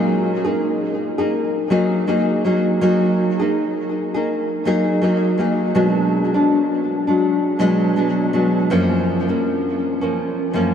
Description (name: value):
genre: indie pop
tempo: 81 BPM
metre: 4/4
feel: swing 60% on 16ths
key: F# major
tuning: A4 = 436 Hz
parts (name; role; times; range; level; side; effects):
- nylon-string guitar; solo; 0.0-10.7 s; F#2 to G#4; -16 LUFS; equal; wide subtle chorus, vibrato effect, ping-pong delay
room: wet huge ambient reverb, RT60 8.9 s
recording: dreamy mix soaked in reverb, cassette tape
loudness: -16 LUFS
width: side -8 dB against mid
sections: 0.0-10.7 A section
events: none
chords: 0.0 F#69; 5.8 Bm6; 8.7 F#maj7